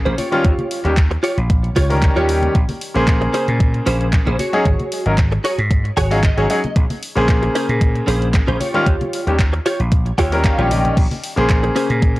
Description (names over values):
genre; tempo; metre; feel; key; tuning
nu-disco, nu disco; 114 BPM; 4/4; straight; Bb minor; A4 = 440 Hz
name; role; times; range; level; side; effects
bright grand piano; accompaniment; 0.0-12.2 s; Db3 to C5; -20 LUFS; left 1 dB; sidechain pumping, tape echo
direct-recorded clean electric guitar; riff; 0.1-12.1 s; Db4 to Ab5; -22 LUFS; right 1 dB; ensemble chorus, tape echo
vintage slap bass; bass; 0.1-12.2 s; Ab1 to Bb2; -19 LUFS; equal; none
house drum kit; drums; 0.1-12.2 s; crash cymbal, handclaps, hi-hat; -29 LUFS; equal; none
congas; percussion; 0.1-11.2 s; none; -27 LUFS; left 1 dB; none
electronic kick drum; drums; 0.4-12.1 s; none; -15 LUFS; equal; overdrive
room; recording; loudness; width
little or no reverb; dry, gritty hardware recording, transformer saturation, cassette tape; -14 LUFS; side -18 dB against mid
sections
0.0-12.2 A section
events
clean electric guitar fill 5.7-6.8, 9.9-11.0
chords
0.2 Eb9; 2.6 Bbm9; 4.4 Ab7sus4; 6.8 Bbm9; 8.6 Eb9; 11.0 Bbm9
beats
| 0.45 0.97 1.50 2.03 | 2.55 3.08 3.60 4.13 | 4.66 5.18 5.71 6.24 | 6.76 7.29 7.82 8.34 | 8.87 9.39 9.92 10.45 | 10.97 11.50 12.03